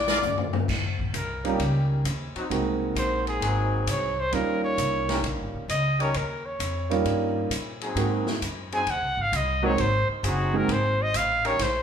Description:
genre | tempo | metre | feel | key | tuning
jazz, big band swing | 132 BPM | 4/4 | swing 68% on 8ths | unclear | A4 = 440 Hz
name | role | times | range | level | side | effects
mellow saxophone section | melody | 0.0-0.5 s | D5 | -27 LUFS | left 5 dB | none
upright bass | bass | 0.0-11.8 s | Eb1 to Bb2 | -29 LUFS | equal | none
swinging big-band drum kit | drums | 0.1-11.7 s | crash cymbal, hi-hat, kick drum, ride cymbal, snare drum, toms | -32 LUFS | left 2 dB | none
warm trumpet | melody | 1.2-11.8 s | Eb4 to Ab5 | -27 LUFS | equal | none
warm grand piano | accompaniment | 1.4-10.7 s | G3 to Gb4 | -27 LUFS | right 4 dB | none
bright trombone section | sustained chords | 1.4-11.6 s | Gb3 to Bb4 | -32 LUFS | left 2 dB | none
room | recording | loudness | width
wet large studio reverb, RT60 1.0 s | band playing live in one room | -23 LUFS | side -8 dB against mid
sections
0.7-11.8 A section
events
drum fill 0.0-0.7; trumpet solo 0.7-11.8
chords
0.0 Bb7; 0.7 Eb7; 2.5 Ab7; 4.3 Eb7; 8.0 Ab7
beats
0.24 | 0.69 1.15 1.60 2.06 | 2.51 2.97 3.42 3.88 | 4.33 4.79 5.24 5.70 | 6.15 6.60 7.06 7.51 | 7.97 8.42 8.88 9.33 | 9.79 10.24 10.70 11.15 | 11.61

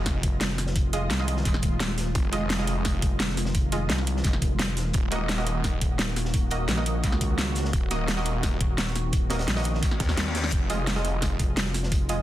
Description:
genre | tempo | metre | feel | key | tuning
dark technical drum and bass | 172 BPM | 4/4 | straight | F phrygian | A4 = 439 Hz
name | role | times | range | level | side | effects
swarming drone | sustained chords | 0.0-12.2 s | Eb3 to Gb4 | -34 LUFS | right 1 dB | built-in reverb, sidechain pumping
snarling distorted saw bass | bass | 0.0-11.4 s | Eb1 to Eb2 | -28 LUFS | equal | distortion, tube saturation
sub drop and reverse cymbal | sound effects | 0.0-0.8, 9.9-10.5 s | none | -36 LUFS | left 4 dB | none
crunchy breakbeat drum kit | drums | 0.1-12.2 s | hi-hat, snare drum | -38 LUFS | left 1 dB | high-pass filter on hats, studio reverb, high-pass filter on snare, high-pass filter on room
dubstep drum kit | drums | 0.1-12.2 s | hi-hat, snare drum | -29 LUFS | equal | studio reverb
electronic kick drum | drums | 0.1-12.0 s | none | -26 LUFS | equal | studio reverb
growling FM bass | bass | 0.2-12.2 s | Eb1 to Db2 | -28 LUFS | equal | tube saturation
orchestra-hit-like synth stab | stabs | 0.9-12.2 s | Ab3 to Eb5 | -33 LUFS | right 2 dB | built-in reverb, cassette tape, dub echo
room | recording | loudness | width
little or no reverb | dense, heavily limited modern master | -23 LUFS | side -14 dB against mid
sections
0.0-12.2 A section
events
impact 0.0-0.8; reverse cymbal 9.9-10.5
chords
0.0 Fm7; 4.9 Ebm; 10.5 Fm7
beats
0.06 0.41 | 0.76 1.10 1.45 1.80 | 2.15 2.50 2.85 3.20 | 3.55 3.90 4.25 4.59 | 4.94 5.29 5.64 5.99 | 6.34 6.69 7.04 7.38 | 7.73 8.08 8.43 8.78 | 9.13 9.48 9.83 10.18 | 10.52 10.87 11.22 11.57 | 11.92

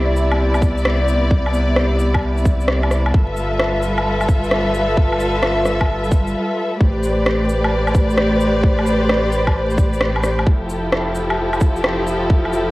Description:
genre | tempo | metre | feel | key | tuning
future garage | 131 BPM | 4/4 | swing 67% on 16ths | A minor | A4 = 440 Hz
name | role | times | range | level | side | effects
dark studio string section | sustained chords | 0.0-12.7 s | C3 to E5 | -18 LUFS | equal | sidechain pumping, cassette tape
warm sub bass | bass | 0.0-12.7 s | F1 to C2 | -21 LUFS | equal | sidechain pumping
electronic shaker, woodblock and rim click | drums | 0.2-12.7 s | none | -22 LUFS | equal | none
electronic kick drum | drums | 0.6-12.4 s | none | -15 LUFS | equal | none
room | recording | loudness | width
light reverb | home recording on cassette, vinyl crackle | -15 LUFS | side -19 dB against mid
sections
0.0-6.8 A section; 6.8-12.7 A section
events
break 6.3-6.8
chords
0.0 Cmaj9; 3.1 G13; 6.8 Am11; 10.5 Fmaj9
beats
0.39 0.85 | 1.31 1.77 2.23 2.68 | 3.14 3.60 4.06 4.51 | 4.97 5.43 5.89 6.35 | 6.80 7.26 7.72 8.18 | 8.64 9.10 9.55 10.01 | 10.47 10.93 11.38 11.84 | 12.30

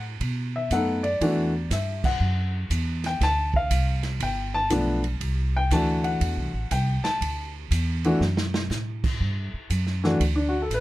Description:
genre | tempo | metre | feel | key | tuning
jazz piano trio | 120 BPM | 4/4 | swing 66% on 8ths | G major | A4 = 439 Hz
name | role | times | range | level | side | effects
upright bass | bass | 0.0-10.8 s | G1 to B2 | -26 LUFS | equal | none
open jazz drum kit | drums | 0.2-10.8 s | crash cymbal, hi-hat, kick drum, ride cymbal, snare drum | -31 LUFS | right 2 dB | none
warm upright piano | melody | 0.6-10.8 s | E3 to A5 | -25 LUFS | left 1 dB | none
room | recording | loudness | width
little or no reverb | close, detailed microphones | -22 LUFS | side -16 dB against mid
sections
0.0-9.2 A section; 9.2-10.8 B section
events
band accent 2.0; drum fill 8.2-8.7; upright piano solo 9.2-10.8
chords
0.2 B7; 1.2 Em7; 3.2 Dm7; 4.2 G7; 5.2 C6; 7.2 D; 9.2 G5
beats
0.21 0.71 | 1.21 1.71 2.21 2.71 | 3.21 3.71 4.21 4.71 | 5.21 5.71 6.21 6.71 | 7.21 7.71 8.21 8.71 | 9.21 9.71 10.21 10.71

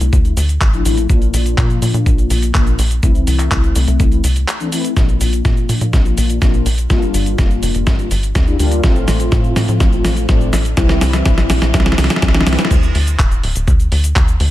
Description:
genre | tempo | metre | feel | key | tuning
italo disco | 124 BPM | 4/4 | straight | D minor | A4 = 441 Hz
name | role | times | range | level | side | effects
mellow synth brass | stabs | 0.0-12.7 s | G2 to F4 | -20 LUFS | left 3 dB | chorus, tape echo
tight sequencer bass | bass | 0.0-14.5 s | D1 to Bb2 | -16 LUFS | equal | none
dusty soul sampler-style drum kit | drums | 0.0-14.5 s | cabasa, crash cymbal, handclaps, hi-hat, snare drum | -20 LUFS | equal | none
electronic kick drum | drums | 0.1-14.3 s | none | -14 LUFS | equal | none
room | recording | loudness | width
digital ambience | none | -12 LUFS | side -14 dB against mid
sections
0.0-5.0 A section; 5.0-12.7 B section; 12.7-14.5 C section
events
break 4.5-5.0; drum fill 5.0-12.7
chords
0.0 Dmadd9; 1.1 Bb; 3.0 Am/C; 5.0 Bb; 6.9 Gm7; 8.8 F/A; 10.8 C; 12.7 D5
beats
0.13 0.61 | 1.09 1.58 2.06 2.55 | 3.03 3.51 4.00 4.48 | 4.97 5.45 5.93 6.42 | 6.90 7.38 7.87 8.35 | 8.84 9.32 9.80 10.29 | 10.77 11.26 11.74 12.22 | 12.71 13.19 13.68 14.16

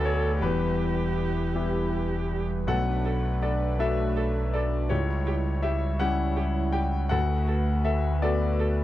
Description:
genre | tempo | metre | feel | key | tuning
neoclassical piano and strings | 54 BPM (dotted quarters) | 6/8 | rubato | B minor | A4 = 442 Hz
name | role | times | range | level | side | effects
bright concert grand piano | accompaniment | 0.0-8.8 s | B1 to G5 | -28 LUFS | left 4 dB | none
rich viola | accompaniment | 0.0-8.7 s | G4 to A4 | -34 LUFS | right 7 dB | none
brassy analog pad | sustained chords | 0.0-8.8 s | G3 to C#5 | -33 LUFS | right 5 dB | chorus
sub bass with octave | bass | 0.0-8.8 s | E1 to D2 | -28 LUFS | right 1 dB | none
room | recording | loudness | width
little or no reverb | dry, close 1970s-style studio recording | -24 LUFS | side -14 dB against mid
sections
0.0-8.8 A section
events
none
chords
0.4 Em; 2.7 Bm7; 4.9 C#dim; 7.1 Bm7/D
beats
| 0.42 1.55 | 2.67 3.79 | 4.90 6.00 | 7.11 8.22

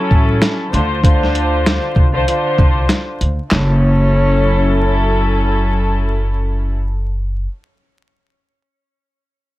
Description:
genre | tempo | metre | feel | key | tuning
hip hop, boom-bap hip-hop | 97 BPM | 4/4 | swing 61% on 16ths | F# minor | A4 = 440 Hz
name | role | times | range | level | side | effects
warm studio string section | accompaniment | 0.0-6.7 s | D3 to C5 | -18 LUFS | left 1 dB | cassette tape, high-pass filter, low-pass filter, plate reverb
upright bass | bass | 0.1-7.4 s | F#1 to D2 | -16 LUFS | equal | none
lo-fi sampler-style drum kit | drums | 0.1-3.7 s | handclaps, hi-hat, kick drum, snare drum | -14 LUFS | equal | none
breathy tenor saxophone | melody | 3.5-5.3 s | C#4 | -21 LUFS | left 2 dB | high-pass filter, low-pass filter, plate reverb, ping-pong delay
room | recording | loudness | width
light reverb | vinyl crackle | -13 LUFS | side -16 dB against mid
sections
0.0-3.5 A section; 3.5-6.0 B section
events
none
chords
0.0 F#m7; 0.7 Dm7; 3.5 F#m7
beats
0.42 | 1.03 1.65 2.27 2.89 | 3.51 4.13 4.75 5.36

